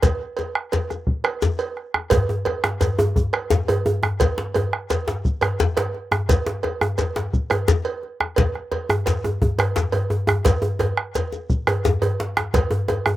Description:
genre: west african traditional, West African drum ensemble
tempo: 115 BPM (dotted quarters)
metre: 12/8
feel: straight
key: none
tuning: none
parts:
  - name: bombo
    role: percussion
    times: 0.0-13.2 s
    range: none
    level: -22 LUFS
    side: right 1 dB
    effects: none
  - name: cowbell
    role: percussion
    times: 0.0-13.0 s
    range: none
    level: -26 LUFS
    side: right 5 dB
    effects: slapback echo
  - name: djembe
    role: percussion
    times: 0.0-13.1 s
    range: none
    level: -23 LUFS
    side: left 4 dB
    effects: none
  - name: shekere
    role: percussion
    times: 0.0-12.7 s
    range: none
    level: -32 LUFS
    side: equal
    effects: none
  - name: djembe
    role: percussion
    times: 2.1-13.2 s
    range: none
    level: -22 LUFS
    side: equal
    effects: none
room: little or no reverb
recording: recorded outdoors, with no room sound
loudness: -19 LUFS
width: side -14 dB against mid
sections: 0.0-2.1 A section; 2.1-13.2 B section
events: none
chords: none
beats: | 0.03 0.55 1.07 1.59 | 2.12 2.64 3.16 3.68 | 4.20 4.72 5.25 5.77 | 6.29 6.81 7.33 7.85 | 8.37 8.89 9.42 9.94 | 10.46 10.98 11.50 12.02 | 12.54 13.06

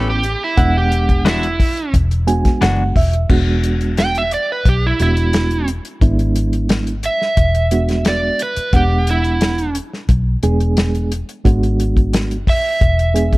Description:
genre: straight-eighth soul blues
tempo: 88 BPM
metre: 4/4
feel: straight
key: E mixolydian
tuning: A4 = 440 Hz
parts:
  - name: overdriven slide guitar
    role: second line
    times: 0.0-13.4 s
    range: E4 to G5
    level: -19 LUFS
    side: right 2 dB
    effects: none
  - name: mellow reed electric piano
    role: accompaniment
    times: 0.0-13.4 s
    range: G#3 to G#5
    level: -20 LUFS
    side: right 2 dB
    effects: fast tremolo
  - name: direct-recorded clean electric guitar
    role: stabs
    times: 0.0-2.8 s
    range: E3 to B4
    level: -22 LUFS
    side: left 3 dB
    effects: none
  - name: vintage muted fingered electric bass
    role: bass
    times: 0.0-13.4 s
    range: E1 to B1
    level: -17 LUFS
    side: equal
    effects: none
  - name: warm soul drum kit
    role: drums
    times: 0.2-13.4 s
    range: crash cymbal, hi-hat, kick drum, snare drum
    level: -17 LUFS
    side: equal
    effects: none
room: small room ambience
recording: none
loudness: -14 LUFS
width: side -20 dB against mid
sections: 0.0-3.3 A section; 3.3-13.4 B section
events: reed electric piano fill 1.9-3.3; electric slide guitar solo 3.3-13.4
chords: 0.0 A9; 0.6 E9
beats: | 0.58 1.26 1.94 2.62 | 3.30 3.98 4.66 5.34 | 6.02 6.70 7.38 8.05 | 8.73 9.41 10.09 10.77 | 11.45 12.13 12.81

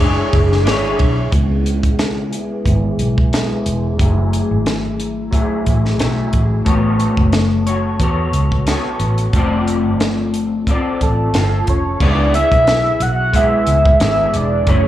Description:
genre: indie pop, bedroom pop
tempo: 90 BPM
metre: 4/4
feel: swing 55% on 16ths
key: unclear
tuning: A4 = 439 Hz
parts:
  - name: soft octave-layered synth lead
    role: melody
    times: 0.0-1.0, 11.0-14.9 s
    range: G#4 to F#5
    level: -16 LUFS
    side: right 1 dB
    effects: analog chorus, slapback echo, analog delay
  - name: electric guitar through a small old amp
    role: accompaniment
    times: 0.0-14.9 s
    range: C#3 to D5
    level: -19 LUFS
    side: left 2 dB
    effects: ensemble chorus, warbly pitch drift, low-pass filter, slapback echo
  - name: vintage muted fingered electric bass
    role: bass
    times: 0.0-14.9 s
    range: E1 to E2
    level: -18 LUFS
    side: equal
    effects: none
  - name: compact cocktail drum kit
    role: drums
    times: 0.3-14.8 s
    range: crash cymbal, hi-hat, kick drum, ride cymbal, snare drum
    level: -18 LUFS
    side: equal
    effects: none
room: little or no reverb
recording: live gig heard through the venue's PA, tape saturation, club reverb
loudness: -13 LUFS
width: side -13 dB against mid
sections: 0.0-1.3 A section; 1.3-12.0 B section; 12.0-14.9 C section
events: filter sweep on clean electric guitar 1.3-12.0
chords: 0.0 E13; 1.3 C#m7; 4.0 F#m9; 6.7 A69; 9.3 F6; 12.0 C#m7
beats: 0.66 | 1.33 1.99 2.66 3.33 | 4.00 4.66 5.33 6.00 | 6.66 7.33 8.00 8.66 | 9.33 10.00 10.67 11.33 | 12.00 12.67 13.34 14.00 | 14.67

